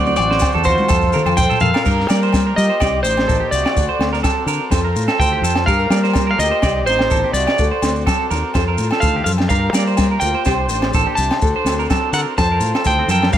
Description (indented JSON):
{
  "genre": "highlife guitar band",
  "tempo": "126 BPM",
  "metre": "4/4",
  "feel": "swing 54% on 16ths",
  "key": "G minor",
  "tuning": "A4 = 440 Hz",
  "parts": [
    { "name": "clean electric guitar", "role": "melody", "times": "0.0-13.4 s", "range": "C5 to A5", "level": "-20 LUFS", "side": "equal", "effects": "none" },
    { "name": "breathy trumpet", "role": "second line", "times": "0.0-13.4 s", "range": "Eb4 to C5", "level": "-28 LUFS", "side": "left 5 dB", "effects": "none" },
    { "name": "nylon-string guitar", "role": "accompaniment", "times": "0.0-13.4 s", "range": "G2 to Bb4", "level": "-26 LUFS", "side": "left 5 dB", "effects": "none" },
    { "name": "combo organ", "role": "sustained chords", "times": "0.0-13.4 s", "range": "C4 to D5", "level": "-31 LUFS", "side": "left 1 dB", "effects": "none" },
    { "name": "electric guitar at the edge of break-up", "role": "arpeggios", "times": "0.0-13.4 s", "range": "C4 to D5", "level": "-22 LUFS", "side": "right 7 dB", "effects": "spring reverb, slapback echo" },
    { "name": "fingered electric bass", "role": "bass", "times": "0.0-13.4 s", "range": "A1 to G3", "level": "-20 LUFS", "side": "equal", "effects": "none" },
    { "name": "compact cocktail drum kit", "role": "drums", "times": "0.1-13.4 s", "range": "crash cymbal, kick drum, snare drum, toms", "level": "-20 LUFS", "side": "equal", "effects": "none" },
    { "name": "maracas", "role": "percussion", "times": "0.1-13.4 s", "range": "none", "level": "-30 LUFS", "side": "left 4 dB", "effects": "none" },
    { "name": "agogo bells", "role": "percussion", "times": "0.2-13.3 s", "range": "none", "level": "-29 LUFS", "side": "left 5 dB", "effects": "none" }
  ],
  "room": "light reverb",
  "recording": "none",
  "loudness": "-14 LUFS",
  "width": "side -10 dB against mid",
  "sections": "0.0-1.9 A section; 1.9-13.4 B section",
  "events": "drum fill 0.0-1.9",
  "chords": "0.0 D7; 0.9 F; 1.9 Gm7; 2.8 Cmadd9; 3.8 D7; 4.7 F; 5.7 Gm7; 6.6 Cmadd9; 7.6 D7; 8.5 F; 9.5 Gm7; 10.5 Csus2; 11.4 D7; 12.4 F",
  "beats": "0.42 0.89 1.37 | 1.85 2.33 2.81 3.29 | 3.76 4.24 4.72 5.20 | 5.68 6.16 6.63 7.11 | 7.59 8.07 8.55 9.03 | 9.50 9.98 10.46 10.94 | 11.41 11.89 12.37 12.85 | 13.32"
}